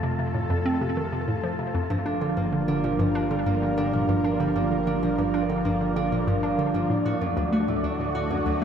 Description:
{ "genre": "ambient, sequencer-driven space music", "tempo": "96 BPM", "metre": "4/4", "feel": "straight", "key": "G minor", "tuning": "A4 = 440 Hz", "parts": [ { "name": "lush unison pad", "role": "sustained chords", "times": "0.0-8.6 s", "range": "D3 to Bb4", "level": "-31 LUFS", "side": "equal", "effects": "chorus" }, { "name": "hollow square pluck", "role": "riff", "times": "0.0-8.6 s", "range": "D2 to D4", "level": "-27 LUFS", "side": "equal", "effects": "chorus, tape echo" }, { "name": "fat analog bass", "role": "bass", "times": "0.0-8.6 s", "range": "G1 to F2", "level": "-35 LUFS", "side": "left 1 dB", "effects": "none" }, { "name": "wind-like tuned noise texture", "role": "texture", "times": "0.0-8.6 s", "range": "D4 to A5", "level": "-31 LUFS", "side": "left 1 dB", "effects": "built-in reverb" }, { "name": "concert harp", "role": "arpeggios", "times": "1.9-8.6 s", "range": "F3 to F#4", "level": "-27 LUFS", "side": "right 2 dB", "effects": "auto-pan, tape echo" } ], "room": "wet echo chamber reverb, RT60 2.4 s", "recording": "echo-heavy mix", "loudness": "-22 LUFS", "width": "side -8 dB against mid", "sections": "0.0-8.6 A section", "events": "none", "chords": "0.0 F; 1.9 Gm7; 6.9 D" }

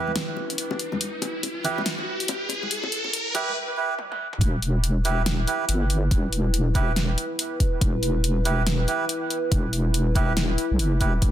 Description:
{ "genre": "deep dubstep", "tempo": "141 BPM", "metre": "4/4", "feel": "swing 62% on 16ths, half-time", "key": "E minor", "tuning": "A4 = 439 Hz", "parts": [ { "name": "dark analog pad", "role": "sustained chords", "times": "0.0-11.3 s", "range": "E4 to B4", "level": "-32 LUFS", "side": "equal", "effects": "chorus, phaser" }, { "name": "melodica", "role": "stabs", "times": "0.0-11.1 s", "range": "E4 to B4", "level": "-30 LUFS", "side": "right 5 dB", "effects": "low-pass filter, dub echo" }, { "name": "riser", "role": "sound effects", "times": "0.0-3.6 s", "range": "none", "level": "-30 LUFS", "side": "equal", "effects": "none" }, { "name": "congas and bongos", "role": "percussion", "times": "0.1-3.5 s", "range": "none", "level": "-34 LUFS", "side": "left 4 dB", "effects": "dub echo" }, { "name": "deep house drum kit", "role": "drums", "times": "0.2-11.3 s", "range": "hi-hat, snare drum, toms", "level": "-28 LUFS", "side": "equal", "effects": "none" }, { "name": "deep soft wobble bass", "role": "bass", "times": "4.4-11.3 s", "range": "E1 to B1", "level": "-23 LUFS", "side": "equal", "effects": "chorus" }, { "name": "electronic kick drum", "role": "drums", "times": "4.4-11.3 s", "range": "none", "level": "-23 LUFS", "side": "equal", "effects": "none" } ], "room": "light reverb, digital ambience", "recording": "dense, heavily limited modern master, high-pass filter", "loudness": "-22 LUFS", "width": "side -12 dB against mid", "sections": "0.0-4.4 A section; 4.4-11.3 B section", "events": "build-up 0.0-4.4; riser 0.0-3.6; drum fill 4.0-4.4; drop 4.4-11.3", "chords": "0.0 Em" }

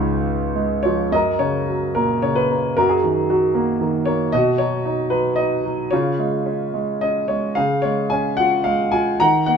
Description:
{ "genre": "classical, lyrical solo piano", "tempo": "111 BPM", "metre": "3/4", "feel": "uneven beats, rubato", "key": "unclear", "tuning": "A4 = 444 Hz", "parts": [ { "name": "warm concert grand piano", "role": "solo", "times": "0.0-9.6 s", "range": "Db2 to A#5", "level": "-17 LUFS", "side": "equal", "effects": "none" } ], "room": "light reverb", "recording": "minimal, uncompressed stereo recording", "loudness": "-17 LUFS", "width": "side -6 dB against mid", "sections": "0.0-1.1 A section; 1.1-9.6 B section", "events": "none", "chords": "0.0 Db; 1.1 F#; 2.8 D#m/F#; 4.3 B; 5.9 C#" }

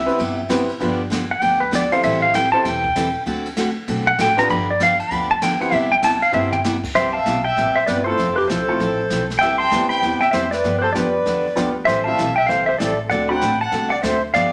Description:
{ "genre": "country, western swing", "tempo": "195 BPM", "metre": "4/4", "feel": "swing 63% on 8ths", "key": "C major", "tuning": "A4 = 440 Hz", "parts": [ { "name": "pedal steel guitar", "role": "melody", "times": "0.0-14.5 s", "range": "G4 to C6", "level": "-20 LUFS", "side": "equal", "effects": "none" }, { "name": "upright bass", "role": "bass", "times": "0.0-14.5 s", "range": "E1 to G2", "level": "-33 LUFS", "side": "equal", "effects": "none" }, { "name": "bright upright piano", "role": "accompaniment", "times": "0.1-13.4 s", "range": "F#3 to C5", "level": "-27 LUFS", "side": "equal", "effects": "none" }, { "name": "jazz brush drum kit", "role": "drums", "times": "0.1-14.5 s", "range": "brushed snare drum, crash cymbal, hi-hat, kick drum, ride cymbal, snare drum, toms", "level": "-33 LUFS", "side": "equal", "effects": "none" }, { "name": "picked steel-string acoustic guitar", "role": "accompaniment", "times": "0.2-14.5 s", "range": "C3 to A4", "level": "-27 LUFS", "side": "equal", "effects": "none" }, { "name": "rich fiddle", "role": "second line", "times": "7.0-14.5 s", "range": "G4 to G5", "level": "-29 LUFS", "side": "equal", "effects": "none" } ], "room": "wet studio reverb, RT60 0.9 s", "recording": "none", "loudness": "-19 LUFS", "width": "mono", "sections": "0.0-6.9 A section; 6.9-14.5 B section", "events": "pedal steel guitar solo 0.0-6.9; drum fill 6.3-6.6", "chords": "0.0 Cmaj7; 0.8 G7; 2.0 Am7; 3.3 D7; 4.5 G7; 5.7 Cmaj7; 8.2 Fmaj7; 9.4 Cmaj7; 10.6 G7; 11.9 Am7; 13.1 D7" }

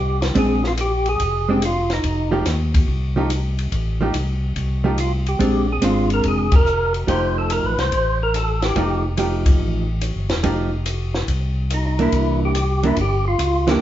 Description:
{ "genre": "soul jazz organ trio", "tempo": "143 BPM", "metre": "4/4", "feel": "swing 67% on 8ths", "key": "F mixolydian", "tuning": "A4 = 439 Hz", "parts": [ { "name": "percussive tonewheel organ", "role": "melody", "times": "0.0-2.3, 5.0-9.0, 11.7-13.8 s", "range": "Eb4 to C5", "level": "-22 LUFS", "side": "equal", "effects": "slow rotary speaker, overdrive" }, { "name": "tonewheel organ", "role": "bass", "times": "0.0-13.8 s", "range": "E1 to Eb2", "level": "-22 LUFS", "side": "equal", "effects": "overdrive, chorus vibrato, slow rotary speaker" }, { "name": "compact cocktail drum kit", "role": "drums", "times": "0.2-13.7 s", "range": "hi-hat, kick drum, ride cymbal, snare drum", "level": "-23 LUFS", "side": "left 1 dB", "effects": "none" }, { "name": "hollow-body jazz guitar", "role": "accompaniment", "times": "0.3-13.8 s", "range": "E3 to G4", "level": "-21 LUFS", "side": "right 2 dB", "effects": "none" } ], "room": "moderate large studio reverb, RT60 0.9 s", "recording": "heard from further back in the room, nothing above 7.7 kHz", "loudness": "-17 LUFS", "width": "side -12 dB against mid", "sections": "0.0-13.8 A section", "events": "band accent 6.5", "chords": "0.4 Bb9; 2.0 F9; 5.4 Bb9; 7.1 F9; 12.1 C9" }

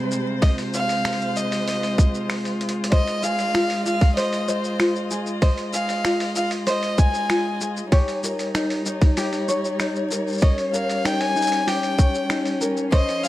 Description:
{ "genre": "folktronica", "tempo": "96 BPM", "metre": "4/4", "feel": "straight", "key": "unclear", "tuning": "A4 = 440 Hz", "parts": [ { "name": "dark violin", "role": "melody", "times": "0.0-13.3 s", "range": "C5 to Ab5", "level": "-26 LUFS", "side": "left 1 dB", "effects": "tape echo, plate reverb" }, { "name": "rich string quartet", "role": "sustained chords", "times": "0.0-13.3 s", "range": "C3 to C6", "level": "-26 LUFS", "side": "left 1 dB", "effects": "none" }, { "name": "lo-fi sampler-style drum kit", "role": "drums", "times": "0.1-13.3 s", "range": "cabasa, finger snaps, hi-hat", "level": "-30 LUFS", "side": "equal", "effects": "none" }, { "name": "electronic kick drum", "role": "drums", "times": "0.4-13.0 s", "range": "none", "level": "-16 LUFS", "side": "equal", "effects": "overdrive" }, { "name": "tenor ukulele", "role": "arpeggios", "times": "2.9-13.3 s", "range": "Eb4 to Eb5", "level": "-25 LUFS", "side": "equal", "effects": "tape echo, plate reverb" } ], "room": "moderate studio reverb, RT60 0.7 s", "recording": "dark, warm production, vinyl crackle", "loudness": "-19 LUFS", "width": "side -15 dB against mid", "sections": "0.0-13.3 A section", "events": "break 2.3-2.9; drum fill 2.6-2.9", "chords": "0.0 Abmaj7/C; 2.9 Fm7; 7.9 Eb7" }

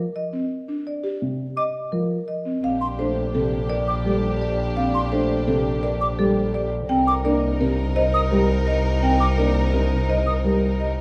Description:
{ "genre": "classical, minimalist pattern music", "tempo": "169 BPM", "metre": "6/4", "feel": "straight", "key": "Bb major", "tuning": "A4 = 440 Hz", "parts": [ { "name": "marimba with hard mallets", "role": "melody", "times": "0.0-11.0 s", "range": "A4 to G5", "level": "-29 LUFS", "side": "equal", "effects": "none" }, { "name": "dark grand piano", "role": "accompaniment", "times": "0.0-10.7 s", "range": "C3 to Bb3", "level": "-28 LUFS", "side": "equal", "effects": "none" }, { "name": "buzzing marimba with soft mallets", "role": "arpeggios", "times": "0.3-10.3 s", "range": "C4 to C5", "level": "-29 LUFS", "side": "equal", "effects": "none" }, { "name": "mellow hollow silver concert flute", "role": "arpeggios", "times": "1.6-10.3 s", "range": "C6 to Eb6", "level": "-29 LUFS", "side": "equal", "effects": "none" }, { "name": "warm studio violin section", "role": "sustained chords", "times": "2.6-10.9 s", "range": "D4 to Bb4", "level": "-32 LUFS", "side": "equal", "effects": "none" }, { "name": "clear double bass", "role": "bass", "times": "2.6-11.0 s", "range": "Bb1 to C2", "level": "-26 LUFS", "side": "equal", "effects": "none" } ], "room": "moderate recital hall reverb, RT60 1.4 s", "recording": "dark, warm production, lossy compression artefacts", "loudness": "-22 LUFS", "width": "mono", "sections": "0.0-2.6 A section; 2.6-11.0 B section", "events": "none", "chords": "0.0 Ebmaj9; 2.6 Bb69; 6.9 Cm7" }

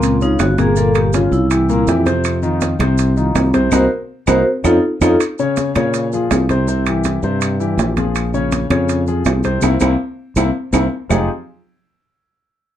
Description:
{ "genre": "Afro-Cuban jazz", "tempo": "163 BPM", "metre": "4/4", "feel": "straight", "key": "F minor", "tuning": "A4 = 440 Hz", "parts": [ { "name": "vibraphone with medium hard mallets", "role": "melody", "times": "0.0-5.1 s", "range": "C4 to C5", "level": "-17 LUFS", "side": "right 1 dB", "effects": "none" }, { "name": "clear concert grand piano", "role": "accompaniment", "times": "0.0-11.3 s", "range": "Bb2 to Db5", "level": "-19 LUFS", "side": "left 3 dB", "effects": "none" }, { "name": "sustaining fretless electric bass", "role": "bass", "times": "0.0-11.3 s", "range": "F1 to Bb2", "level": "-17 LUFS", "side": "right 1 dB", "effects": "none" }, { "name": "congas", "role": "percussion", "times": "0.0-11.2 s", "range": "none", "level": "-23 LUFS", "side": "left 1 dB", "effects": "none" }, { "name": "maracas", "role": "percussion", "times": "0.0-11.2 s", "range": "none", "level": "-32 LUFS", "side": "right 9 dB", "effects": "none" }, { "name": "timbales", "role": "percussion", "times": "0.0-11.2 s", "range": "none", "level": "-23 LUFS", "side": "right 8 dB", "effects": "none" }, { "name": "claves", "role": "percussion", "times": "0.4-11.2 s", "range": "none", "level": "-30 LUFS", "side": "right 1 dB", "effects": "none" } ], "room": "moderate club ambience, RT60 0.5 s", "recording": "dark, warm production", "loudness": "-14 LUFS", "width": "side -11 dB against mid", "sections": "0.0-5.2 A section; 5.2-11.1 B section; 11.1-12.6 C section", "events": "band accent 3.7-5.2, 9.6-11.1; drum fill 4.5-5.2", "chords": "0.0 Gbmaj7#11; 0.8 Gm7b5; 1.5 C7; 2.2 F5; 3.7 Cm7b5; 4.5 Faug7; 5.2 Bbm7; 6.7 C7; 8.2 Bbm7; 9.6 C7; 11.1 Fm9" }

